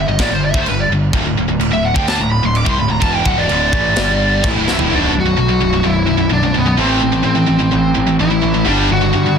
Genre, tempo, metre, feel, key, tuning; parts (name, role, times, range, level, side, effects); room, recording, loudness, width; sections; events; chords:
heavy metal; 127 BPM; 4/4; straight; B phrygian; A4 = 440 Hz
lead guitar through a small cranked amp; melody; 0.0-9.4 s; B3 to D6; -17 LUFS; equal; overdrive
tight distorted guitar; riff; 0.0-9.4 s; B1 to D4; -16 LUFS; equal; distortion
fuzz picked electric bass; bass; 0.0-9.4 s; B0 to G2; -19 LUFS; equal; overdrive
tight metal drum kit; drums; 0.2-4.9 s; china cymbal, kick drum, snare drum, toms; -20 LUFS; equal
small room ambience; dense, heavily limited modern master; -12 LUFS; side -7 dB against mid
0.0-4.9 A section; 4.9-9.4 B section
lead electric guitar solo 0.0-4.9; drum fill 4.7
0.0 G5; 1.1 D5; 4.0 G5; 4.4 D5; 4.9 B5; 6.8 Am; 8.7 G5